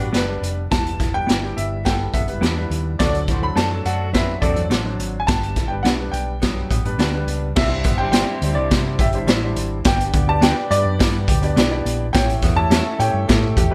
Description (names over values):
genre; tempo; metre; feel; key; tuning
uptempo 1960s-style soul; 105 BPM; 4/4; straight; G major; A4 = 441 Hz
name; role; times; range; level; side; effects
bright grand piano; melody; 0.0-13.7 s; B4 to B5; -27 LUFS; equal; none
mellow horn section; second line; 0.0-13.7 s; A3 to E5; -32 LUFS; equal; none
warm upright piano; accompaniment; 0.0-13.7 s; F#3 to D5; -30 LUFS; equal; none
archtop guitar, miked and amplified; riff; 0.0-13.7 s; B3 to G4; -34 LUFS; equal; none
hollow-body short-scale fingered electric bass; bass; 0.0-13.7 s; E1 to C3; -26 LUFS; equal; none
clean electric guitar; stabs; 0.1-12.8 s; G3 to C5; -29 LUFS; equal; none
raw garage drum kit; drums; 0.1-13.7 s; crash cymbal, hi-hat, kick drum, snare drum; -22 LUFS; equal; none
room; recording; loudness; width
light reverb; lossy compression artefacts; -19 LUFS; mono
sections
0.0-7.6 A section; 7.6-13.7 B section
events
none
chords
0.0 G; 0.7 Em; 3.0 D7; 5.3 G; 7.6 Cadd9; 9.9 G; 12.1 A7